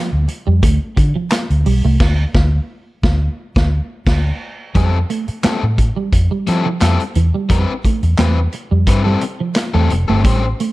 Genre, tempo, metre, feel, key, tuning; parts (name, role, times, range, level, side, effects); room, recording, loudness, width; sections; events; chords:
funk; 87 BPM; 4/4; straight; A4 = 440 Hz
clean electric guitar; riff; 0.0-10.7 s; E3 to A3; -22 LUFS; right 5 dB; ensemble chorus
vintage muted fingered electric bass; bass; 0.1-10.5 s; F1 to F3; -15 LUFS; equal
vintage drum kit; drums; 0.3-10.7 s; crash cymbal, handclaps, hi-hat, kick drum, snare drum; -17 LUFS; equal
crunchy overdriven guitar; accompaniment; 4.7-10.4 s; G3 to B#4; -21 LUFS; left 5 dB
light reverb, small room ambience; dark, warm production; -14 LUFS; side -18 dB against mid
0.0-4.7 A section; 4.7-10.7 B section
break 0.0-4.7; band accent 2.0-4.7
0.0 N.C.; 4.7 Fmaj9